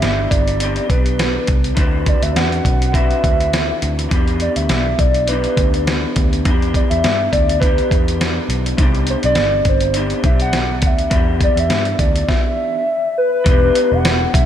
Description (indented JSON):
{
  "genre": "indie pop, bedroom pop",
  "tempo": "103 BPM",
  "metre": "4/4",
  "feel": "swing 55% on 16ths",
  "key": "E minor",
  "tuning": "A4 = 444 Hz",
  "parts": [
    { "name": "warbly nostalgic lead", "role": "melody", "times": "0.0-14.5 s", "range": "B4 to F#5", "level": "-20 LUFS", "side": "equal", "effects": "wide subtle chorus, slapback echo" },
    { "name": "electric guitar through a small old amp", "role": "accompaniment", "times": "0.0-14.5 s", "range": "C3 to B4", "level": "-22 LUFS", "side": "left 2 dB", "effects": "wide subtle chorus, warbly pitch drift, slapback echo" },
    { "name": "vintage muted picked electric bass", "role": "bass", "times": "0.0-14.5 s", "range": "E1 to G2", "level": "-20 LUFS", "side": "equal", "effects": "none" },
    { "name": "dusty soul sampler-style drum kit", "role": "drums", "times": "0.0-14.5 s", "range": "hi-hat, kick drum, snare drum", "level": "-17 LUFS", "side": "equal", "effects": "none" }
  ],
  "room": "moderate lush hall reverb, RT60 3.0 s",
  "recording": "big arena sound",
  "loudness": "-14 LUFS",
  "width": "side -10 dB against mid",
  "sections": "0.0-13.5 A section",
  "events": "none",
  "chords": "0.0 Cmaj9; 1.8 D13; 4.1 Em7; 8.8 Cmaj9; 11.1 Em7"
}